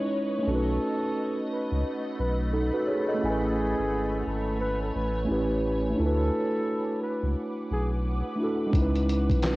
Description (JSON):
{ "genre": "lo-fi hip hop", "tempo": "87 BPM", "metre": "4/4", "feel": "swing 62% on 16ths", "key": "unclear", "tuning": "A4 = 440 Hz", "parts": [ { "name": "mellow tine electric piano", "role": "accompaniment", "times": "0.0-9.6 s", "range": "G#3 to G#5", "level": "-28 LUFS", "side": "right 1 dB", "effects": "fast stereo tremolo, cassette tape, low-pass filter" }, { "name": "granular cloud pad", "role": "sustained chords", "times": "0.0-9.6 s", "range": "A3 to D6", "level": "-37 LUFS", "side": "left 1 dB", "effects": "built-in reverb, low-pass filter" }, { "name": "breathy flugelhorn", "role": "melody", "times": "0.5-7.9 s", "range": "G#4 to B4", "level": "-33 LUFS", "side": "equal", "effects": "low-pass filter, cassette tape, analog delay" }, { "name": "saturated sub bass", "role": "bass", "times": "0.5-9.6 s", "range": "G#1 to D2", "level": "-28 LUFS", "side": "equal", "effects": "none" }, { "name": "lo-fi sampler-style drum kit", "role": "drums", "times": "8.7-9.6 s", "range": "handclaps, hi-hat, kick drum, snare drum", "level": "-26 LUFS", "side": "equal", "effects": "cassette tape" } ], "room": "light reverb", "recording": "home recording on cassette", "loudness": "-25 LUFS", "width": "side -20 dB against mid", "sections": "0.0-9.6 A section", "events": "none", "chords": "0.5 B7; 3.2 Amaj9; 5.3 A9; 6.0 D69; 8.7 C#m9" }